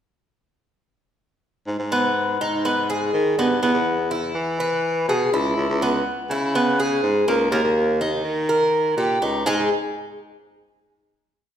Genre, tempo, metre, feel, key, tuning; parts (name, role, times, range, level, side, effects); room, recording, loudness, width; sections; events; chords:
latin, Cuban son and guajira; 123 BPM; 4/4; straight; G# harmonic minor; A4 = 440 Hz
warm baritone saxophone; bass; 1.7-9.7 s; C#2 to E3; -23 LUFS; equal
Cuban tres; arpeggios; 1.9-9.7 s; G#3 to B4; -21 LUFS; equal
wet recital hall reverb, RT60 1.5 s; recorded in a church or concert hall; -19 LUFS; side -9 dB against mid
1.7-9.5 verse; 9.5-11.4 final chord
1.7 G#m; 3.6 E5; 5.6 C#m7; 7.5 D#; 9.5 G#5